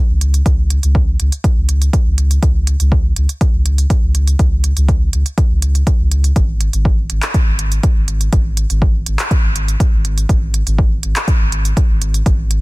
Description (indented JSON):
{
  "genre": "dub techno",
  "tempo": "122 BPM",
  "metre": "4/4",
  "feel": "straight",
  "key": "unclear",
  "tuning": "A4 = 439 Hz",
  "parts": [
    { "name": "soft dub sub bass", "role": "bass", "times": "0.1-12.6 s", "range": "G#1 to C#2", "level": "-15 LUFS", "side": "equal", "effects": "sidechain pumping" },
    { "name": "deep house drum kit", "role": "drums", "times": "0.2-12.6 s", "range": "handclaps, hi-hat", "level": "-22 LUFS", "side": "right 2 dB", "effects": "none" },
    { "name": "electronic kick drum", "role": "drums", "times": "0.5-12.4 s", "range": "none", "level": "-14 LUFS", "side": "equal", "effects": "none" }
  ],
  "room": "little or no reverb",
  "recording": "dense, heavily limited modern master",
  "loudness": "-12 LUFS",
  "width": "side -22 dB against mid",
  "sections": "0.0-12.6 A section",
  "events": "none",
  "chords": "none"
}